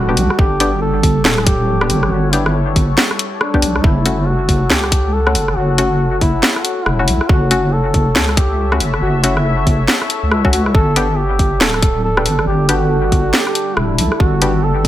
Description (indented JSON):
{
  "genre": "deep dubstep",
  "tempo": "139 BPM",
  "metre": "4/4",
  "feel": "swing 61% on 16ths, half-time",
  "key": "F# phrygian",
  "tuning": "A4 = 440 Hz",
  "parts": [
    { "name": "mellow duduk", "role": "melody", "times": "0.0-14.9 s", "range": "D4 to A4", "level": "-20 LUFS", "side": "equal", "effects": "dub echo" },
    { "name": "deep dark ambient pad", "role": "sustained chords", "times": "0.0-14.9 s", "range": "G3 to F#5", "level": "-23 LUFS", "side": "left 1 dB", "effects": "chorus, built-in reverb" },
    { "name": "deep soft wobble bass", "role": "bass", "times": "0.0-14.9 s", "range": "D1 to C#2", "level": "-17 LUFS", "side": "equal", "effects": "chorus" },
    { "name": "filtered dub chord stab", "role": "stabs", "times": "0.1-14.5 s", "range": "A3 to G4", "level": "-22 LUFS", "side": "left 3 dB", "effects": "chorus, dub echo" },
    { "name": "garage drum kit", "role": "drums", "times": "0.2-14.9 s", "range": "hi-hat, rim click, snare drum", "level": "-16 LUFS", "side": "equal", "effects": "studio reverb" },
    { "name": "electronic kick drum", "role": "drums", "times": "0.4-14.9 s", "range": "none", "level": "-14 LUFS", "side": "equal", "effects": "studio reverb" }
  ],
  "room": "light reverb, digital ambience",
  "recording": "none",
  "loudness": "-12 LUFS",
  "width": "side -13 dB against mid",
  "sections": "0.0-14.9 A section",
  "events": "none",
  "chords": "0.0 G; 3.8 F#m; 10.7 G",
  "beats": "| 0.39 0.82 1.25 1.68 | 2.11 2.54 2.98 3.41 | 3.84 4.27 4.70 5.13 | 5.57 6.00 6.43 6.86 | 7.29 7.72 8.16 8.59 | 9.02 9.45 9.88 10.31 | 10.75 11.18 11.61 12.04 | 12.47 12.90 13.34 13.77 | 14.20 14.63"
}